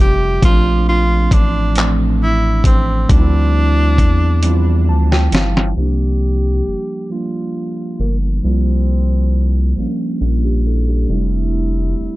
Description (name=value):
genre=slow six-eight R&B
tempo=45 BPM (dotted quarters)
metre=6/8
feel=straight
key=unclear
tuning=A4 = 438 Hz
part: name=breathy tenor saxophone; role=melody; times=0.0-12.2 s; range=Bb3 to G4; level=-22 LUFS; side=equal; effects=tape echo
part: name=mellow tine electric piano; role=accompaniment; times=0.0-12.2 s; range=E3 to A5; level=-21 LUFS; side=right 3 dB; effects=lush chorus
part: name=rubbery square bass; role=bass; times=0.0-12.1 s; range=F1 to E2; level=-15 LUFS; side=equal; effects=none
part: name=dusty soul sampler-style drum kit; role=drums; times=0.4-5.8 s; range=handclaps, hi-hat, kick drum, snare drum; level=-14 LUFS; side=equal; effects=none
room=digital ambience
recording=dark, warm production, low-pass filter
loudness=-13 LUFS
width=side -18 dB against mid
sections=0.0-5.8 A section; 5.8-12.2 B section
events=drum fill 4.4-5.8; tine electric piano fill 4.4-5.8; filter sweep 5.8-12.2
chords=0.4 Bbmaj7; 3.1 Dm11; 5.8 C9sus4; 11.1 Fmaj9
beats=| 0.43 1.76 | 3.10 4.43 | 5.76 7.10 | 8.43 9.77 | 11.10